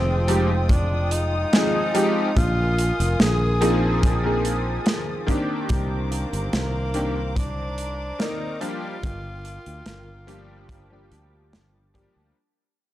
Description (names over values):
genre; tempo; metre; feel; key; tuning
vaporwave; 72 BPM; 4/4; straight; unclear; A4 = 439 Hz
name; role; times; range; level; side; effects
warm tenor saxophone; melody; 0.0-11.9 s; Bb3 to Ab4; -28 LUFS; equal; tape echo
clear electric grand piano; accompaniment; 0.0-12.3 s; Eb3 to D5; -25 LUFS; equal; analog chorus
dark studio string section; sustained chords; 0.0-12.3 s; Eb3 to Eb6; -33 LUFS; left 1 dB; none
fretless electric bass; bass; 0.0-12.3 s; F1 to D2; -25 LUFS; equal; tube saturation
modern studio drum kit; drums; 0.3-12.1 s; hi-hat, snare drum; -25 LUFS; right 1 dB; none
kick drum; drums; 0.7-12.1 s; none; -23 LUFS; equal; none
room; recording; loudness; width
small room ambience; dry, gritty hardware recording; -20 LUFS; side -14 dB against mid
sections
0.0-12.4 A section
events
fade-out 3.5-12.4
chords
0.0 Fm9; 2.4 Bb7sus4; 5.3 Cm9; 8.6 Gm7